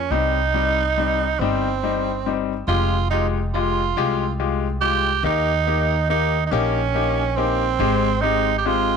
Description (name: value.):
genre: six-eight pop ballad.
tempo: 47 BPM (dotted quarters).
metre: 6/8.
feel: straight.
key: Ab major.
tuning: A4 = 440 Hz.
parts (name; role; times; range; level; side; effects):
growling tenor saxophone; melody; 0.0-9.0 s; C4 to G4; -22 LUFS; right 9 dB; none.
upright bass; bass; 0.0-9.0 s; F1 to Eb2; -24 LUFS; equal; transformer saturation.
bright baby grand piano; accompaniment; 0.1-8.9 s; G3 to G4; -23 LUFS; left 12 dB; none.
room: wet spring reverb, RT60 1.6 s, studio ambience.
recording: 1960s-style stereo with parts hard left and right.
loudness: -18 LUFS.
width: side -6 dB against mid.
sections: 0.0-7.8 A section; 7.8-9.0 B section.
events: none.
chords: 0.1 Cm; 2.7 Fmadd9; 5.2 Eb; 7.8 Abmaj7.